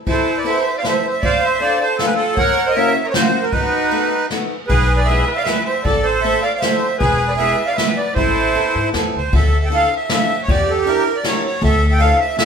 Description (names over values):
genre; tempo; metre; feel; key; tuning
musette waltz; 156 BPM; 3/4; swing 55% on 8ths; A harmonic minor, D harmonic minor from 9.3 s; A4 = 437 Hz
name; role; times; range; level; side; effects
accordion; melody; 0.1-12.4 s; D#4 to G5; -18 LUFS; right 2 dB; light tremolo tuning
warm violin; second line; 0.1-8.9 s; F4 to D5; -22 LUFS; right 1 dB; none
jazz brush drum kit; drums; 0.1-12.4 s; kick drum, ride cymbal, snare drum; -22 LUFS; right 1 dB; none
picked swing-style acoustic guitar; accompaniment; 0.4-12.4 s; C#3 to B4; -23 LUFS; left 3 dB; none
upright bass; bass; 4.7-12.1 s; E1 to G#2; -18 LUFS; left 1 dB; none
room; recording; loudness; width
moderate studio reverb, RT60 0.7 s; band playing live in one room; -14 LUFS; side -6 dB against mid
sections
0.1-9.3 A section; 9.3-12.4 B section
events
none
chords
0.1 Amadd9; 1.2 Dm7; 2.4 F#7; 3.5 B7; 4.7 E/B; 5.9 Am; 7.0 E; 8.2 Amadd9; 9.3 Dmadd9; 10.5 Em7b5; 11.6 Dmadd9